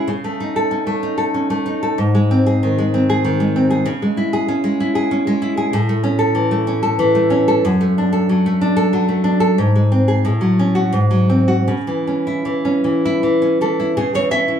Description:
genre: romantic piece for solo classical guitar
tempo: 76-97 BPM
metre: 3/4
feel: rubato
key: C# minor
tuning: A4 = 442 Hz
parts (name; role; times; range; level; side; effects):
- nylon-string guitar; solo; 0.0-14.6 s; F#2 to E5; -14 LUFS; equal; none
room: wet studio reverb, RT60 0.8 s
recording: band playing live in one room, small room ambience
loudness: -14 LUFS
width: side -8 dB against mid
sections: 0.0-14.0 A section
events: none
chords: 0.1 A/C#; 2.0 G#; 3.9 C#m; 5.7 A; 7.6 D/F#; 9.6 G#; 10.2 F#m/A; 10.9 G#7; 11.7 C#m

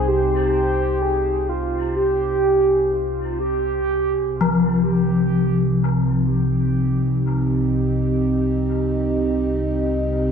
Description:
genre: dark ambient drone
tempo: free time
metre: none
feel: none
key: C minor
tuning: A4 = 439 Hz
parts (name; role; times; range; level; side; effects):
- mellow horn-like synth lead; melody; 0.0-3.3 s; F4 to G4; -21 LUFS; right 1 dB; lush chorus, dub echo
- dark analog pad; sustained chords; 0.0-10.3 s; C4 to G5; -26 LUFS; right 2 dB; chorus
- gamelan-type bronze metallophone; arpeggios; 0.0-10.1 s; F3 to Eb4; -24 LUFS; left 4 dB; dub echo
- deep rumbling drone; drone; 0.0-10.3 s; C2 to C3; -23 LUFS; equal; built-in reverb
room: wet echo chamber reverb, RT60 2.1 s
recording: echo-heavy mix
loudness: -18 LUFS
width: side -7 dB against mid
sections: 0.0-3.8 A section; 3.8-10.3 B section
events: none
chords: 0.0 Cm

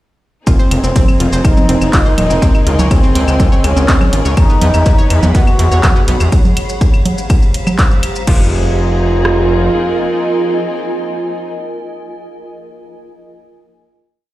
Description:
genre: melodic techno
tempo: 123 BPM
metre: 4/4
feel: straight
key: F minor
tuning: A4 = 440 Hz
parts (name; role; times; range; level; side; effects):
- expressive synth lead; melody; 0.5-11.5 s; C4 to Gb4; -18 LUFS; equal; chorus, sidechain pumping, tape echo
- warm studio string section; sustained chords; 0.5-11.5 s; Db3 to B4; -23 LUFS; left 1 dB; sidechain pumping
- analog pluck; arpeggios; 0.5-8.5 s; B3 to Db5; -21 LUFS; right 1 dB; chorus, sidechain pumping, dub echo
- gritty driven synth bass; bass; 0.5-9.7 s; Eb1 to E2; -14 LUFS; equal; sidechain pumping
- punchy analog drum machine; drums; 0.5-8.4 s; claves, congas, crash cymbal, handclaps, hi-hat, ride cymbal, shaker; -19 LUFS; right 1 dB; none
- techno drum kit; drums; 0.5-9.4 s; kick drum, rim click; -11 LUFS; equal; none
- granular cloud pad; texture; 1.6-11.7 s; F4 to C6; -23 LUFS; right 1 dB; built-in reverb, sidechain pumping
room: digital ambience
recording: played on a big sound system in a bare room, stone room reverb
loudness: -10 LUFS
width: side -16 dB against mid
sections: 0.5-8.3 drop; 8.3-12.2 final chord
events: drop 0.5-8.3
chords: 0.5 Fm7; 2.4 Dbsus2; 4.4 E; 6.3 Csus4; 8.3 Fm7

